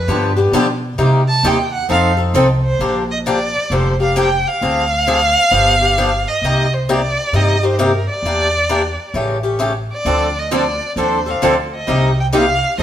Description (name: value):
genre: acoustic string swing (jazz manouche)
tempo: 132 BPM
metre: 4/4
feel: swing 63% on 8ths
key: unclear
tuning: A4 = 441 Hz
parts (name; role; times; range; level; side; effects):
- warm violin; melody; 0.0-12.8 s; Bb4 to A5; -17 LUFS; right 1 dB; none
- upright bass; bass; 0.0-12.8 s; F1 to C3; -19 LUFS; equal; none
- picked steel-string acoustic guitar; accompaniment; 0.1-2.5, 10.1-12.8 s; C3 to A4; -21 LUFS; right 5 dB; none
- picked swing-style acoustic guitar; accompaniment; 0.1-12.8 s; C3 to A4; -18 LUFS; left 3 dB; none
room: wet stone room reverb, RT60 1.1 s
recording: band playing live in one room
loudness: -13 LUFS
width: side -10 dB against mid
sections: 0.0-2.8 A section; 2.8-12.8 B section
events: violin solo 0.0-2.8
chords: 0.1 G7; 1.0 Cm7; 1.9 F7; 2.8 Bb6; 4.6 Dm7b5; 5.5 G7; 6.4 Cm7; 8.2 Em7b5; 9.1 A7; 10.1 Dm7; 11.9 Cm7